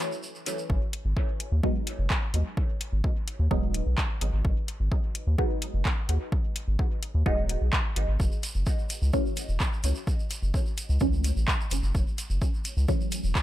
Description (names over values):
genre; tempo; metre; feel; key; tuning
dub techno; 128 BPM; 4/4; straight; G# phrygian; A4 = 441 Hz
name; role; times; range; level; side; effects
filtered dub chord stab; stabs; 0.0-13.4 s; E3 to D#4; -33 LUFS; right 1 dB; phaser, sidechain pumping, dub echo
deep house drum kit; drums; 0.0-13.4 s; handclaps, hi-hat; -32 LUFS; equal; overdrive, small room ambience, dub echo
tube shaker; percussion; 0.0-0.7, 8.2-13.4 s; none; -40 LUFS; right 3 dB; none
round analog bass; bass; 0.7-13.3 s; D#1 to D#2; -25 LUFS; equal; sidechain pumping
electronic kick drum; drums; 0.7-13.4 s; none; -28 LUFS; equal; overdrive, small room ambience
room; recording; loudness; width
digital ambience; none; -25 LUFS; side -14 dB against mid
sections
0.7-13.4 A section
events
break 0.0-0.7; filter sweep on synth stab 0.7-13.4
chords
0.0 F#m7; 0.7 G#m7; 8.2 F#m7